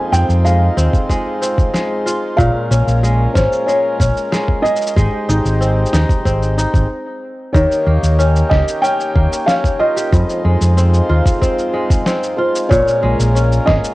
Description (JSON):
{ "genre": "folktronica", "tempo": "93 BPM", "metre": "4/4", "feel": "straight", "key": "Eb mixolydian", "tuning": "A4 = 440 Hz", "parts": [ { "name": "felt-muted upright piano", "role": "melody", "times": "0.0-13.7 s", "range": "C5 to Ab5", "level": "-19 LUFS", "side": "equal", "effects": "cassette tape, tape echo" }, { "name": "pedal harmonium", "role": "sustained chords", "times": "0.0-13.9 s", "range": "Ab3 to Db5", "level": "-24 LUFS", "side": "equal", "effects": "cassette tape" }, { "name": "kora", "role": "arpeggios", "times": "0.0-13.9 s", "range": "F2 to Ab4", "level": "-20 LUFS", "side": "left 1 dB", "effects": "cassette tape, tape echo" }, { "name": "fingered electric bass", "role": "bass", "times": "0.1-13.8 s", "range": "Ab1 to F2", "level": "-14 LUFS", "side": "equal", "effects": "none" }, { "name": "electronic cabasa and snare drum", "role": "drums", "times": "0.1-13.9 s", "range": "none", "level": "-24 LUFS", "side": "equal", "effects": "overdrive, cassette tape" }, { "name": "electronic kick drum", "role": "drums", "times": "0.9-13.8 s", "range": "none", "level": "-16 LUFS", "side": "equal", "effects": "overdrive, cassette tape" } ], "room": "light reverb, small room ambience", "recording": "home recording on cassette", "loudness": "-12 LUFS", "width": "side -18 dB against mid", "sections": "0.0-7.5 A section; 7.5-13.9 B section", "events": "stop 6.9-7.5", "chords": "0.0 Fm7; 2.4 Bbm7; 5.0 Abmaj7; 7.5 Eb7; 10.1 Fm7; 12.7 Bbm7" }